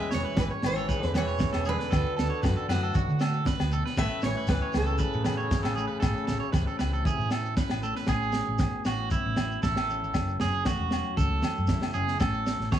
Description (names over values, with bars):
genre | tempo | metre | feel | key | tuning
highlife guitar band | 117 BPM | 4/4 | straight | A major | A4 = 440 Hz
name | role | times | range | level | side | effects
picked steel-string acoustic guitar | melody | 0.0-7.5 s | F#4 to E5 | -33 LUFS | right 3 dB | none
brilliant trombone | second line | 0.0-7.5 s | A2 to A3 | -37 LUFS | left 4 dB | none
mellow electric guitar | accompaniment | 0.0-12.8 s | E2 to G#4 | -37 LUFS | left 8 dB | none
electric guitar at the edge of break-up | arpeggios | 0.0-12.8 s | E4 to C#5 | -32 LUFS | right 5 dB | slapback echo
shekere | percussion | 0.0-12.8 s | none | -37 LUFS | left 2 dB | none
hollow-body short-scale fingered electric bass | bass | 0.1-12.8 s | E1 to D3 | -30 LUFS | right 1 dB | none
crunchy breakbeat drum kit | drums | 0.1-12.8 s | kick drum, snare drum | -30 LUFS | right 1 dB | none
agogo bells | percussion | 0.4-12.8 s | none | -39 LUFS | left 7 dB | none
congas | percussion | 0.4-12.8 s | none | -35 LUFS | right 2 dB | none
room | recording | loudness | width
moderate spring reverb, RT60 1.2 s, small room ambience | none | -25 LUFS | side -10 dB against mid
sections
0.0-8.1 A section; 8.1-12.8 B section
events
clean electric guitar solo 8.1-12.8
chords
0.0 E6; 1.9 D; 4.0 A; 8.1 Aadd9; 10.1 F#m7; 12.2 Aadd9